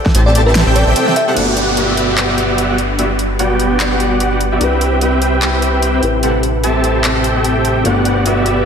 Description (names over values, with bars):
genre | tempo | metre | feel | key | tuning
future bass | 148 BPM | 4/4 | swing 55% on 16ths, half-time | G major | A4 = 439 Hz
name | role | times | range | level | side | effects
concert harp | arpeggios | 0.0-3.4 s | E4 to A5 | -26 LUFS | left 4 dB | none
airy dreamy lead | arpeggios | 0.1-1.3 s | F#5 to A5 | -25 LUFS | right 1 dB | chorus, sidechain pumping, ping-pong delay
dense compressed supersaw | riff | 0.1-8.7 s | B3 to A5 | -15 LUFS | equal | cassette tape, sidechain pumping, low-pass filter, ping-pong delay
fat analog bass | bass | 0.1-8.7 s | G1 to C2 | -17 LUFS | equal | sidechain pumping
big-room dance drum kit | drums | 0.1-8.5 s | crash cymbal, handclaps, hi-hat, snare drum | -20 LUFS | equal | overdrive
bell-like FM electric piano | melody | 0.3-1.4 s | B4 to E5 | -19 LUFS | equal | chorus, sidechain pumping, analog delay
felt-muted upright piano | accompaniment | 1.3-8.7 s | A3 to B4 | -24 LUFS | left 4 dB | analog chorus, sidechain pumping, ping-pong delay
shimmering ambient pad | sustained chords | 2.1-8.7 s | C3 to B4 | -25 LUFS | right 2 dB | chorus, built-in reverb, phaser, sidechain pumping
downlifter | sound effects | 1.4-4.6 s | none | -24 LUFS | equal | none
room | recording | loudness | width
wet lush hall reverb, RT60 2.3 s | dreamy mix soaked in reverb | -12 LUFS | side -7 dB against mid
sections
0.0-1.4 A section; 1.4-8.7 B section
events
drop 0.0-1.4; filter sweep on ambient pad 1.4-8.7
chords
0.0 Am7; 1.4 Gmaj7; 4.6 Cmaj7; 6.0 Am7; 7.9 Gmaj7